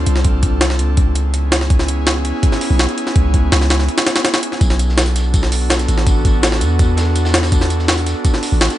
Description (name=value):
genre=drum and bass, jungle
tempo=165 BPM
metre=4/4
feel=straight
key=B dorian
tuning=A4 = 437 Hz
part: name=airy breathy pad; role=sustained chords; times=0.0-8.8 s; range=B3 to A4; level=-22 LUFS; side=equal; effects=chorus
part: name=long sustained 808-style bass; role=bass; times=0.0-8.7 s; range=A1 to E2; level=-16 LUFS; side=equal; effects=none
part: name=jungle sampler-style drum kit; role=drums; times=0.1-8.8 s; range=hi-hat, kick drum, snare drum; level=-15 LUFS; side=equal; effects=overdrive, small room reverb
part: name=crunchy breakbeat drum kit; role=drums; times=4.6-8.8 s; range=hi-hat, snare drum, tambourine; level=-28 LUFS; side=right 1 dB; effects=high-pass filter on hats, small room reverb, high-pass filter on snare, high-pass filter on perc, high-pass filter on room
room=small room ambience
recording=nothing above 10.4 kHz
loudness=-13 LUFS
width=side -14 dB against mid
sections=0.0-8.8 A section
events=break 3.9-4.6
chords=0.0 Dm7; 1.0 C#m7; 4.6 Bm7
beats=| 0.25 0.61 0.98 1.34 | 1.70 2.07 2.43 2.79 | 3.16 3.52 3.89 4.25 | 4.61 4.98 5.34 5.70 | 6.07 6.43 6.79 7.16 | 7.52 7.89 8.25 8.61